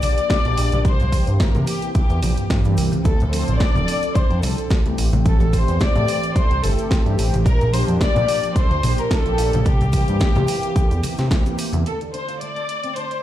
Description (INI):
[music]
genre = nu-disco, nu disco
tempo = 109 BPM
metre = 4/4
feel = swing 54% on 16ths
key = D minor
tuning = A4 = 442 Hz
[part]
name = warm chamber violin section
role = melody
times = 0.0-13.2 s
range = G4 to D5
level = -24 LUFS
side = left 2 dB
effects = tape echo
[part]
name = mellow synth brass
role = accompaniment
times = 0.0-13.2 s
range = D3 to A4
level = -26 LUFS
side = equal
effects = chorus, phaser, sidechain pumping
[part]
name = fat analog bass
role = bass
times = 0.0-11.8 s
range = D1 to C3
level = -20 LUFS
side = equal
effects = none
[part]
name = house drum kit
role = drums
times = 0.0-13.2 s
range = hi-hat, snare drum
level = -28 LUFS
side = equal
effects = none
[part]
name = cabasa and congas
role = percussion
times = 0.0-11.8 s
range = none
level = -28 LUFS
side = left 1 dB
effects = none
[part]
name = electronic kick drum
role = drums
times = 0.3-11.4 s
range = none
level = -18 LUFS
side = equal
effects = none
[part]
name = clean electric guitar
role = riff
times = 12.0-13.2 s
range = A3 to D5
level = -37 LUFS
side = right 1 dB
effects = wide subtle chorus, low-pass filter
[sound]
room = light reverb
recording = played on a big sound system in a bare room, large studio reverb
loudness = -16 LUFS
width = side -12 dB against mid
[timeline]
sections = 0.0-11.9 A section; 11.9-13.2 B section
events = filter sweep on clean electric guitar 11.9-13.2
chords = 0.0 Gm7/Bb; 0.9 C7; 3.1 Dm7; 5.0 Am7; 7.5 Gm7/Bb; 9.7 C7; 11.9 Dm7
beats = 0.30 | 0.85 1.40 1.95 2.50 | 3.05 3.60 4.16 4.71 | 5.26 5.81 6.36 6.91 | 7.46 8.01 8.56 9.11 | 9.66 10.21 10.76 11.31 | 11.86 12.41 12.96